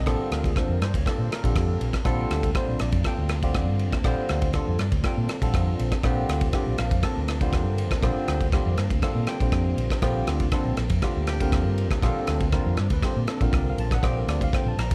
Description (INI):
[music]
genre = electric jazz fusion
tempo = 120 BPM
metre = 4/4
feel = straight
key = Bb major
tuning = A4 = 440 Hz
[part]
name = barky tine electric piano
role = accompaniment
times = 0.0-14.9 s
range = D3 to Bb5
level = -32 LUFS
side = equal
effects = overdrive, phaser
[part]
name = string machine, full ensemble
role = sustained chords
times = 0.0-14.9 s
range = Bb3 to D4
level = -38 LUFS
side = equal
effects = none
[part]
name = woody fretless electric bass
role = bass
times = 0.0-14.9 s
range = Bb1 to Bb2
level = -28 LUFS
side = equal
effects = none
[part]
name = modern studio drum kit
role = drums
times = 0.1-14.9 s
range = kick drum, ride cymbal, rim click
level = -28 LUFS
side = equal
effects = none
[sound]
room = light reverb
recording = none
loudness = -24 LUFS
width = mono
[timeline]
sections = 0.0-14.9 A section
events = none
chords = 0.0 Bbmaj9